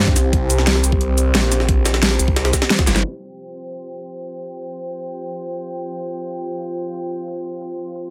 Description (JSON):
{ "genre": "dark technical drum and bass", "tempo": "177 BPM", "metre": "4/4", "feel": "straight", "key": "unclear", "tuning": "A4 = 440 Hz", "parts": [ { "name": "dark analog pad", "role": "sustained chords", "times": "0.0-8.1 s", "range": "C4 to G5", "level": "-28 LUFS", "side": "equal", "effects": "chorus, vintage 12-bit sampler grit, sidechain pumping" }, { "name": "phased detuned saw bass", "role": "bass", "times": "0.0-3.0 s", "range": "G1 to G2", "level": "-21 LUFS", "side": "equal", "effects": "phaser, overdrive, sidechain pumping" }, { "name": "electronic kick drum", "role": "drums", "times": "0.1-2.9 s", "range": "none", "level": "-21 LUFS", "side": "equal", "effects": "overdrive" }, { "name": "jungle sampler-style drum kit", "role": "drums", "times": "0.1-3.0 s", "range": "hi-hat, snare drum", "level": "-26 LUFS", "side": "equal", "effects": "high-pass filter on hats, high-pass filter on snare" }, { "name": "dubstep drum kit", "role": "drums", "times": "0.2-8.0 s", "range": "cabasa, hi-hat, snare drum", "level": "-21 LUFS", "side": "equal", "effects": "overdrive, low-pass filter on hats, low-pass filter on cymbals, low-pass filter on perc, low-pass filter on snare" } ], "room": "light reverb, digital ambience", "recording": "low-pass filter", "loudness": "-20 LUFS", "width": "mono", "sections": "0.0-3.0 A section; 3.0-8.1 B section", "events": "drop 0.0-3.0; drum fill 2.9; filter sweep 3.0-8.1", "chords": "0.0 C5; 3.0 F5", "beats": "| 0.33 0.67 1.01 1.35 | 1.69 2.02 2.36 2.70 | 3.04 3.38 3.72 4.06 | 4.40 4.74 5.08 5.42 | 5.75 6.09 6.43 6.77 | 7.11 7.45 7.79" }